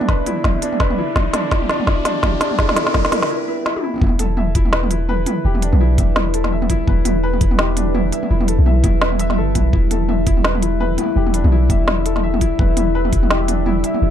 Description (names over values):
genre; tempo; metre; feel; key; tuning
half-time drum and bass; 168 BPM; 4/4; swing 58% on 16ths, half-time; unclear; A4 = 440 Hz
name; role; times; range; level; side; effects
deep dark ambient pad; sustained chords; 0.0-14.1 s; G3 to G5; -24 LUFS; left 1 dB; chorus, built-in reverb, sidechain pumping
felt-muted upright piano; arpeggios; 0.0-14.1 s; D4 to E5; -23 LUFS; left 2 dB; tape echo
organic electronic drum kit; drums; 0.0-14.0 s; hi-hat, snare drum, toms; -20 LUFS; right 1 dB; none
riser; sound effects; 0.1-3.3 s; none; -28 LUFS; equal; none
electronic kick drum; drums; 0.1-13.2 s; none; -18 LUFS; equal; none
long sustained 808-style bass; bass; 4.0-14.1 s; E1 to B1; -18 LUFS; equal; none
room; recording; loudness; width
little or no reverb; none; -15 LUFS; side -10 dB against mid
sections
0.0-4.0 A section; 4.0-14.1 B section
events
build-up 0.0-4.0; drum fill 0.0-3.3, 3.7-4.0; riser 0.1-3.3; break 3.3-4.0; drop 4.0-14.1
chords
0.0 Em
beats
0.09 0.45 0.80 | 1.16 1.52 1.88 2.23 | 2.59 2.95 3.30 3.66 | 4.02 4.38 4.73 5.09 | 5.45 5.80 6.16 6.52 | 6.88 7.23 7.59 7.95 | 8.30 8.66 9.02 9.38 | 9.73 10.09 10.45 10.80 | 11.16 11.52 11.88 12.23 | 12.59 12.95 13.30 13.66 | 14.02